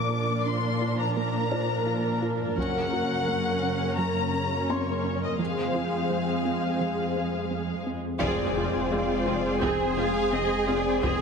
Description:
cinematic, hybrid orchestral and electronic film score; 85 BPM; 4/4; straight; F dorian; A4 = 437 Hz
rich studio violin section; melody; 0.0-11.2 s; Db5 to D6; -32 LUFS; left 4 dB
rich symphonic viola section; accompaniment; 0.0-11.2 s; Ab3 to Bb4; -33 LUFS; right 1 dB
warm analog pad; sustained chords; 0.0-11.2 s; Db3 to D5; -30 LUFS; left 1 dB; chorus
dark symphonic cello section; bass; 0.0-11.2 s; F2 to Ab4; -30 LUFS; right 3 dB
felt-muted upright piano; texture; 0.0-11.2 s; C4 to C6; -38 LUFS; left 3 dB
soft round pluck; arpeggios; 0.1-11.2 s; F3 to Bb4; -35 LUFS; right 1 dB; chorus, ping-pong delay
solo taiko drums; drums; 2.6-3.9, 8.2-11.2 s; -36 LUFS; left 1 dB
rich symphonic violin section; second line; 8.2-11.2 s; C5 to F5; -34 LUFS; left 4 dB
dark French horn section; sustained chords; 8.2-11.2 s; Ab3 to Ab4; -34 LUFS; left 8 dB
mellow tuba; bass; 8.2-11.2 s; F1; -37 LUFS; right 3 dB
rich symphonic double bass section; bass; 8.2-11.1 s; F1; -39 LUFS; right 3 dB
sub bass with octave; bass; 8.2-11.2 s; F1; -37 LUFS; left 1 dB
impact; sound effects; 8.2-11.0 s; -39 LUFS; left 1 dB
wet concert hall reverb, RT60 2.0 s; heavily compressed radio sound, multiband compression; -24 LUFS; side -6 dB against mid
0.0-8.2 A section; 8.2-11.2 A section
band accent 8.2-8.9; impact 8.2-11.0
0.0 Bb; 2.6 Gb; 5.4 Fm

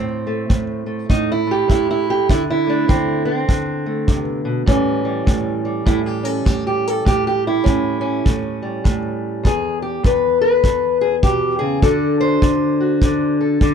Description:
acoustic country blues, solo or duo; 101 BPM; 4/4; swing 62% on 8ths; A4 = 440 Hz
fingerpicked steel-string acoustic guitar; melody; 0.0-13.7 s; E2 to C5; -17 LUFS; equal
kick drum; drums; 0.5-13.7 s; -18 LUFS; equal
light reverb; dark, warm production; -16 LUFS; side -7 dB against mid
0.0-13.7 A section
0.0 N.C.; 2.3 D5; 4.7 A7; 9.4 E5; 11.8 D7

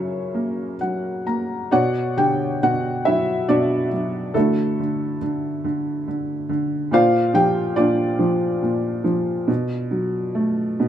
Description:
classical, lyrical solo piano; 69 BPM; 3/4; rubato; B minor; A4 = 440 Hz
felt-muted upright piano; solo; 0.0-10.9 s; F#2 to A#5; -19 LUFS; equal
light reverb; -19 LUFS; side -10 dB against mid
0.0-10.9 A section
felt piano fill 0.3-1.7
0.0 F#; 1.7 Bmadd9; 4.3 Dadd9; 6.9 A#add9; 9.5 Bm7

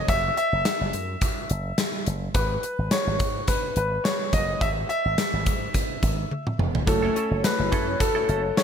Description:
1980s-style pop; 106 BPM; 4/4; swing 55% on 16ths; F# dorian; A4 = 441 Hz
clear concert grand piano; melody; 0.0-8.6 s; A4 to E5; -26 LUFS; left 1 dB; digital delay
slap bass with an envelope filter; bass; 0.1-8.5 s; E1 to G#2; -28 LUFS; equal
gated 80s drum kit; drums; 0.1-8.6 s; hi-hat, kick drum, snare drum, toms; -25 LUFS; equal
FM electric piano with soft pad layer; accompaniment; 6.9-8.6 s; A3 to C#5; -28 LUFS; equal; chorus, phaser
direct-recorded clean electric guitar; riff; 6.9-8.6 s; C#4 to A4; -31 LUFS; right 4 dB; lush chorus
moderate lush hall reverb, RT60 2.2 s; bright 1980s-style digital production; -22 LUFS; side -8 dB against mid
0.0-8.6 A section
drum fill 6.3-6.9
0.0 F#7(no3); 2.3 G#m; 4.6 E; 6.9 F#m7

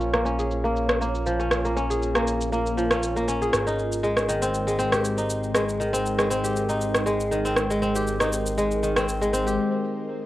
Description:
afro house; 119 BPM; 4/4; swing 53% on 16ths; A4 = 438 Hz
ethereal airy pad; sustained chords; 0.0-10.3 s; Ab3 to Db5; -30 LUFS; equal; ensemble chorus, built-in reverb, phaser
kora; arpeggios; 0.0-10.3 s; Eb3 to Ab4; -24 LUFS; equal; low-pass filter, tape echo
smooth synth bass; bass; 0.0-9.6 s; Ab1 to Bb1; -31 LUFS; equal
electronic shaker and rim click; drums; 0.0-9.6 s; -26 LUFS; equal; low-pass filter on snare, cassette tape, low-pass filter on perc, low-pass filter on room
moderate booth ambience, RT60 0.2 s; home recording on cassette; -22 LUFS; side -15 dB against mid
0.0-10.3 A section
filter sweep on drum 0.0-10.3; break 9.6-10.3
0.0 Bbm; 3.5 Abmaj7

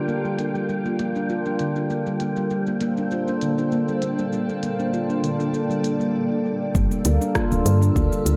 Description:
organic downtempo; 99 BPM; 4/4; swing 54% on 16ths; G minor; A4 = 440 Hz
granular cloud pad; sustained chords; 0.0-8.4 s; G3 to D5; -29 LUFS; equal; built-in reverb, sidechain pumping
handpan; arpeggios; 0.0-8.4 s; D3 to F4; -26 LUFS; equal; low-pass filter, tape echo
wind-like tuned noise texture; texture; 0.0-6.1 s; G5; -39 LUFS; equal; built-in reverb
organic electronic drum kit; drums; 0.1-8.4 s; cabasa, hi-hat, rim click; -34 LUFS; equal; low-pass filter on perc, low-pass filter on hats, low-pass filter on snare, low-pass filter on cymbals
woody FM bass; bass; 6.7-8.4 s; D1 to G2; -21 LUFS; equal; sidechain pumping
electronic kick drum; drums; 6.7-8.1 s; -26 LUFS; equal
moderate plate reverb, RT60 1.9 s, digital ambience; echo-heavy mix; -23 LUFS; mono
0.0-6.8 A section; 6.8-8.4 B section
0.0 Gm7; 1.9 Bbmaj9; 6.8 Gm9

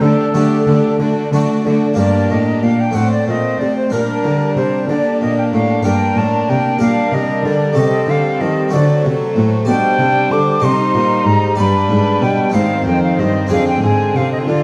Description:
classical, baroque-style concerto movement with solo episodes; 62 BPM (dotted quarters); 6/8; straight; G minor; A4 = 440 Hz
clear chamber violin section; melody; 0.0-14.6 s; F4 to C5; -30 LUFS; equal
silver concert flute; melody; 0.0-14.6 s; A4 to D6; -21 LUFS; equal
rich chamber violin section; second line; 0.0-14.6 s; A3 to F4; -23 LUFS; equal
harpsichord; accompaniment; 0.0-14.6 s; F2 to Eb5; -22 LUFS; equal
rich chamber viola section; accompaniment; 0.0-14.6 s; D3 to Bb3; -23 LUFS; equal
rich symphonic cello section; bass; 0.0-14.6 s; F2 to Eb3; -20 LUFS; equal
wet recital hall reverb, RT60 1.4 s; dark, warm production; -15 LUFS; mono
0.0-2.0 A section; 2.0-14.6 A section
0.0 Dsus4; 1.0 D; 2.0 Gm; 3.0 D5/A; 3.9 Gm/Bb; 5.9 Gm; 6.8 Gm/Bb; 7.8 Am7b5/C; 8.7 D; 9.7 G/B; 10.6 Cm; 11.6 G; 12.6 Ab; 13.5 Dm7b5/F

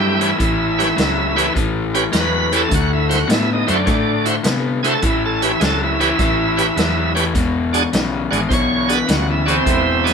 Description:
electric blues shuffle; 104 BPM; 4/4; swing 68% on 8ths; A mixolydian; A4 = 440 Hz
bright tonewheel organ; accompaniment; 0.0-10.1 s; C4 to C#5; -18 LUFS; right 4 dB; slow rotary speaker, overdrive
crunchy overdriven guitar; riff; 0.0-10.1 s; E2 to B3; -20 LUFS; left 5 dB
hollow-body short-scale fingered electric bass; bass; 0.0-10.1 s; E1 to C3; -22 LUFS; equal
vintage drum kit; drums; 0.2-10.1 s; hi-hat, kick drum, snare drum; -22 LUFS; equal
moderate studio reverb, RT60 0.6 s; band playing live in one room; -15 LUFS; side -6 dB against mid
0.0-10.1 A section
0.0 A7; 2.7 D7; 5.0 A7; 7.3 E7

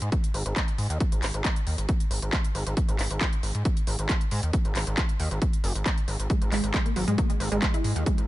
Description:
driving peak-time techno; 136 BPM; 4/4; straight; A4 = 440 Hz
gritty driven synth bass; bass; 0.0-8.3 s; F#1 to G#2; -28 LUFS; equal; sidechain pumping
techno drum kit; drums; 0.0-8.3 s; handclaps, hi-hat; -32 LUFS; equal; overdrive, sidechain pumping on hats, studio reverb
electronic kick drum; drums; 0.1-8.2 s; -26 LUFS; equal; overdrive, studio reverb
resonant blip pluck; riff; 6.3-8.1 s; F#3 to E4; -29 LUFS; equal; chorus, tube saturation, sidechain pumping, ping-pong delay
little or no reverb; nothing above 10.7 kHz; -24 LUFS; side -16 dB against mid
0.0-8.3 A section
0.0 G#5

